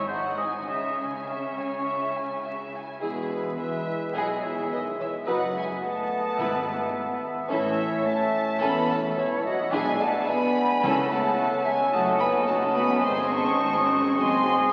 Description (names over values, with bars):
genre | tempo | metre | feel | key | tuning
quick classical-period movement for symphony orchestra | 107 BPM | 4/4 | rubato | C# minor, E major from 3.0 s | A4 = 438 Hz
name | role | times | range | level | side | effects
rich studio violin section | melody | 0.0-14.7 s | F#4 to G#5 | -36 LUFS | equal | none
clear oboe | second line | 0.0-14.7 s | B#4 to E5 | -33 LUFS | equal | none
clear studio violin section | second line | 0.0-14.7 s | C#4 to C#6 | -34 LUFS | equal | none
dark studio viola section | accompaniment | 0.0-14.7 s | F#3 to G#4 | -38 LUFS | equal | none
rich studio cello section | bass | 0.0-14.7 s | E2 to C#3 | -39 LUFS | equal | none
rich studio double bass section | bass | 0.0-14.7 s | E1 to C#2 | -42 LUFS | equal | none
bright silver concert flute | second line | 3.0-14.7 s | G#4 to A5 | -33 LUFS | equal | none
warm bassoon | accompaniment | 3.0-14.7 s | G#3 to D4 | -32 LUFS | equal | none
dark French horn section | sustained chords | 3.0-14.7 s | B2 to C#4 | -32 LUFS | equal | none
timpani | percussion | 6.4-7.2, 10.8-11.6 s | G#2 to C#3 | -43 LUFS | equal | none
room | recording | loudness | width
wet church reverb, RT60 3.3 s | very old 78 rpm record, vinyl crackle | -26 LUFS | mono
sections
0.0-3.0 A section; 3.0-14.7 B section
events
none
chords
0.1 G#7; 0.7 C#m; 3.0 E; 5.3 B7/F#; 6.4 E/G#; 7.5 A; 9.7 E7/B; 10.8 A/C#; 11.9 D#m7b5/F#; 13.0 G#; 14.2 G#7/F#